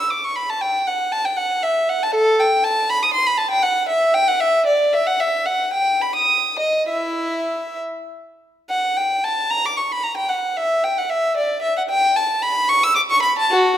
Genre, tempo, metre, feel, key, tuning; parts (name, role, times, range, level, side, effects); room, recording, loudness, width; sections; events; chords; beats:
classical, baroque-style suite movement for unaccompanied violin; 65-82 BPM (dotted quarters); 6/8; rubato; E minor, B minor from 8.7 s; A4 = 440 Hz
rich violin; solo; 0.0-13.8 s; E4 to E6; -17 LUFS; equal
moderate recital hall reverb, RT60 1.5 s; -17 LUFS; side -11 dB against mid
0.0-8.7 A section; 8.7-13.8 A section
| 0.61 1.38 | 2.15 2.89 | 3.63 4.41 | 5.19 6.02 | 6.90 7.81 | 8.70 9.51 | 10.31 11.11 | 11.90 12.68 | 13.51